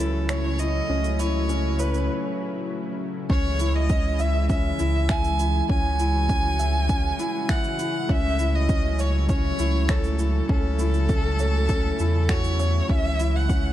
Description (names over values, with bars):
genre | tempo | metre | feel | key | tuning
piano and strings electronica | 100 BPM | 4/4 | straight | C# minor | A4 = 442 Hz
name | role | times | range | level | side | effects
clear violin | melody | 0.0-13.7 s | A4 to G#5 | -28 LUFS | right 1 dB | tape echo
lush unison pad | sustained chords | 0.0-13.7 s | C#3 to F#4 | -31 LUFS | left 1 dB | chorus, sidechain pumping
felt-muted upright piano | riff | 0.0-13.7 s | C#4 to E5 | -30 LUFS | left 2 dB | tape echo
warm sub bass | bass | 0.0-13.7 s | C#2 to E2 | -24 LUFS | equal | sidechain pumping
electronic finger snaps and shaker | drums | 0.3-13.6 s | none | -34 LUFS | right 1 dB | none
electronic kick drum | drums | 3.3-13.6 s | none | -24 LUFS | equal | overdrive
room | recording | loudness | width
light reverb | dark, warm production | -21 LUFS | side -12 dB against mid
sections
0.0-3.3 A section; 3.3-13.7 B section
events
build-up 0.0-3.3; filter sweep on analog synth pad 0.0-3.3; break 2.1-3.3; drop 3.3-13.7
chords
0.0 F#m7/C#; 3.3 C#m; 8.1 F#m7/C#; 12.9 C#m